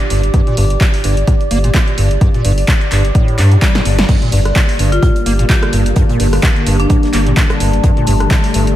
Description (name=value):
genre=acid house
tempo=128 BPM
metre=4/4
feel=swing 56% on 16ths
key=G minor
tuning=A4 = 440 Hz
part: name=punchy analog drum machine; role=drums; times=0.0-8.8 s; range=crash cymbal, handclaps, hi-hat, rim click, snare drum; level=-19 LUFS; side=equal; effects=overdrive
part: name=warbly tape-like pad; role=texture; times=0.0-8.8 s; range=G4 to D6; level=-22 LUFS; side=left 1 dB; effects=chorus, built-in reverb, phaser, sidechain pumping
part: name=acid bass, square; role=riff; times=0.1-8.6 s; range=G2 to Bb3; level=-18 LUFS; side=equal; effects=overdrive, ensemble chorus, cassette tape, sidechain pumping
part: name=round analog bass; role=bass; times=0.1-8.7 s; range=G1 to G2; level=-14 LUFS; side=equal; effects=sidechain pumping
part: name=electronic kick drum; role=drums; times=0.3-8.4 s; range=none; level=-12 LUFS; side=equal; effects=overdrive
part: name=warm analog pad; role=sustained chords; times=4.1-8.8 s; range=D3 to Bb3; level=-21 LUFS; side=left 1 dB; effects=chorus, vintage 12-bit sampler grit, sidechain pumping
part: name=warm soul drum kit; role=drums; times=4.1-8.7 s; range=hi-hat, snare drum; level=-33 LUFS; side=right 3 dB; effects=none
part: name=marimba with hard mallets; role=melody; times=4.9-7.4 s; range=D4 to G4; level=-23 LUFS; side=left 1 dB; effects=vintage 12-bit sampler grit, ping-pong delay
room=light reverb, digital ambience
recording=none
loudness=-10 LUFS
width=side -13 dB against mid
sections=0.0-8.8 A section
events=drum fill 3.7-4.1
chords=0.0 Gm